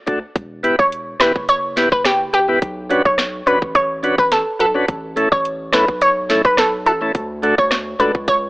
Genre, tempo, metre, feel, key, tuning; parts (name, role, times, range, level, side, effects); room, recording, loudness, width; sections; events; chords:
dancehall; 106 BPM; 4/4; straight; E dorian; A4 = 440 Hz
tonewheel organ; accompaniment; 0.1-8.1 s; A3 to B4; -17 LUFS; equal; slow rotary speaker, sidechain pumping
saturated sub bass; bass; 0.1-8.5 s; E1 to D2; -31 LUFS; equal
island pop drum kit; drums; 0.1-8.4 s; hi-hat, kick drum, rim click, snare drum; -20 LUFS; equal
analog pluck; melody; 0.8-8.4 s; G4 to C#5; -16 LUFS; equal; chorus
little or no reverb; dry, gritty hardware recording, AM radio sound; -14 LUFS; side -19 dB against mid
0.4-8.5 A section
0.4 Em; 2.6 Bmadd9; 4.9 A; 7.1 D